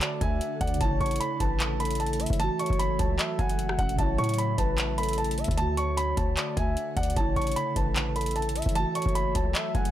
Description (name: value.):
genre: hip hop, trap.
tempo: 151 BPM.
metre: 4/4.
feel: half-time.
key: A major.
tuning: A4 = 440 Hz.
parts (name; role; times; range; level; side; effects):
dark grand piano; melody; 0.0-9.9 s; F#5 to C#6; -31 LUFS; right 2 dB; none.
gliding portamento lead; second line; 0.0-9.9 s; A4 to F#5; -34 LUFS; left 5 dB; chorus, tape echo.
muted felt-like synth keys; accompaniment; 0.0-9.9 s; C#3 to F#4; -33 LUFS; right 4 dB; chorus.
ethereal airy pad; sustained chords; 0.0-9.9 s; D3 to F#5; -37 LUFS; left 1 dB; ensemble chorus, built-in reverb.
booming analog drum machine; drums; 0.0-9.9 s; handclaps, hi-hat, kick drum, rim click; -29 LUFS; equal; none.
hard-hitting 808-style bass; bass; 0.2-9.9 s; E1 to A2; -30 LUFS; equal; none.
room: little or no reverb.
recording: none.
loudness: -24 LUFS.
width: side -12 dB against mid.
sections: 0.0-9.9 A section.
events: none.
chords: 0.0 D; 0.8 A; 2.4 F#m7; 4.0 A; 5.6 D; 7.2 A.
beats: 0.01 0.41 | 0.81 1.20 1.60 2.00 | 2.40 2.79 3.19 3.59 | 3.99 4.38 4.78 5.18 | 5.58 5.97 6.37 6.77 | 7.17 7.56 7.96 8.36 | 8.75 9.15 9.55.